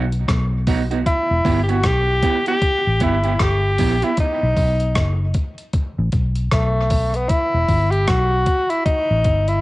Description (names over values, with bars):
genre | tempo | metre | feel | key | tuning
dub reggae | 77 BPM | 4/4 | swing 60% on 16ths | E harmonic minor | A4 = 444 Hz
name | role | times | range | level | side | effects
electric guitar through a small old amp | accompaniment | 0.0-4.1 s | B3 to G4 | -25 LUFS | right 6 dB | cassette tape, tape echo
vintage muted fingered electric bass | bass | 0.0-9.6 s | E1 to B1 | -19 LUFS | equal | none
breakbeat sampler-style drum kit | drums | 0.1-9.6 s | hi-hat, kick drum, rim click | -21 LUFS | equal | none
breathy tenor saxophone | melody | 1.1-9.6 s | A3 to G4 | -19 LUFS | equal | tape echo
room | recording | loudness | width
light reverb | home recording on cassette, nothing above 10.3 kHz | -16 LUFS | side -19 dB against mid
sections
0.0-9.6 A section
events
break 0.0-1.1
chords
0.0 B; 1.1 Em; 4.2 B; 7.3 Em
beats
0.28 | 1.06 1.84 2.62 3.40 | 4.18 4.96 5.74 6.52 | 7.30 8.08 8.86